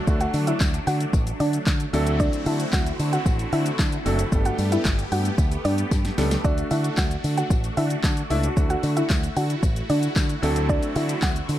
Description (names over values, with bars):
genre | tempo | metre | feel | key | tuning
dance-pop | 113 BPM | 4/4 | straight | D major | A4 = 441 Hz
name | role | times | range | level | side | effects
filtered supersaw swell | sustained chords | 0.0-11.6 s | D3 to G4 | -31 LUFS | equal | phaser, sidechain pumping
clear grand piano | accompaniment | 0.1-11.3 s | F#3 to A4 | -28 LUFS | right 1 dB | sidechain pumping
fingered electric bass with an envelope filter | bass | 0.1-11.6 s | F#1 to D3 | -25 LUFS | equal | sidechain pumping
deep house drum kit | drums | 0.1-11.6 s | handclaps, hi-hat, kick drum, shaker, snare drum | -24 LUFS | equal | overdrive
tambourine | percussion | 0.1-11.6 s | none | -42 LUFS | left 14 dB | none
soft round pluck | melody | 0.2-11.3 s | D4 to F#5 | -28 LUFS | equal | chorus, ping-pong delay
room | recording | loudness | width
little or no reverb | none | -20 LUFS | side -13 dB against mid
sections
0.0-11.6 A section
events
drum fill 5.9-6.4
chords
0.0 D; 1.9 D7; 4.3 Gadd9; 6.4 D; 10.4 D7